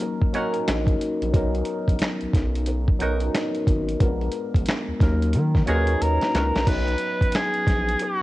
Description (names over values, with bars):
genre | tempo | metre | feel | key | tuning
R&B, neo-soul | 90 BPM | 4/4 | swing 62% on 16ths | B major | A4 = 440 Hz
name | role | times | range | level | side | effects
hollow-body jazz guitar | second line | 0.0-8.1 s | C#4 to A#4 | -30 LUFS | right 3 dB | wah
tine electric piano | accompaniment | 0.0-8.2 s | F#3 to C#5 | -26 LUFS | left 1 dB | overdrive, phaser
dusty soul sampler-style drum kit | drums | 0.0-8.2 s | crash cymbal, finger snaps, hi-hat, kick drum, snare drum | -23 LUFS | equal | cassette tape
round analog bass | bass | 0.7-8.0 s | G#1 to D#3 | -24 LUFS | equal | transformer saturation
breathy tenor saxophone | melody | 5.7-8.2 s | F#4 to B4 | -24 LUFS | equal | cassette tape
room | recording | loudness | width
digital ambience | home recording on cassette | -20 LUFS | side -17 dB against mid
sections
0.0-6.7 A section; 6.7-8.2 B section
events
drum fill 6.0-6.7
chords
0.0 D#m7; 1.3 Bmaj7; 4.0 A#7b9; 5.0 D#m7; 6.7 Bmaj7